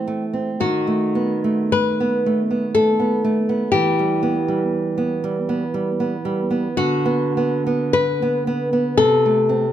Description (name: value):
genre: romantic duo for nylon-string guitar and classical guitar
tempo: 49-63 BPM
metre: 3/4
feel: rubato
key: unclear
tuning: A4 = 436 Hz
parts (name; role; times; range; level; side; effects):
- nylon-string guitar; melody; 0.0-9.7 s; F#4 to B4; -20 LUFS; left 4 dB; none
- nylon-string guitar; accompaniment; 0.0-9.7 s; C3 to C4; -20 LUFS; right 3 dB; none
room: moderate recital hall reverb, RT60 1.6 s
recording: close, detailed microphones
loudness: -17 LUFS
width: side -11 dB against mid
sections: 0.0-9.7 A section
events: none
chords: 0.0 F#m7b5/E; 0.6 B7/D#; 3.7 Em; 6.8 Bm/D; 9.0 Am/C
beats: | 0.60 1.73 2.74 | 3.71 4.71 5.72 | 6.77 7.94 8.98